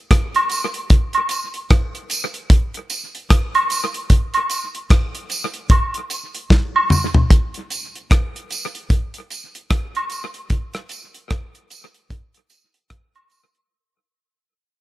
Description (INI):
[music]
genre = reggae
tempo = 75 BPM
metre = 4/4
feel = swing 60% on 16ths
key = none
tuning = none
[part]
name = damped 70s drum kit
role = drums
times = 0.1-13.7 s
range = hi-hat, kick drum, rim click, snare drum, toms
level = -16 LUFS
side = equal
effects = analog delay
[part]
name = woodblock and tambourine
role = percussion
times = 0.4-13.5 s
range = none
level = -21 LUFS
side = right 2 dB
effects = none
[sound]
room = little or no reverb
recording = lossy compression artefacts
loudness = -17 LUFS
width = side -16 dB against mid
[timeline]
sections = 0.0-7.3 A section; 7.3-13.7 B section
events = drum fill 6.5-7.3; fade-out 7.3-13.7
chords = none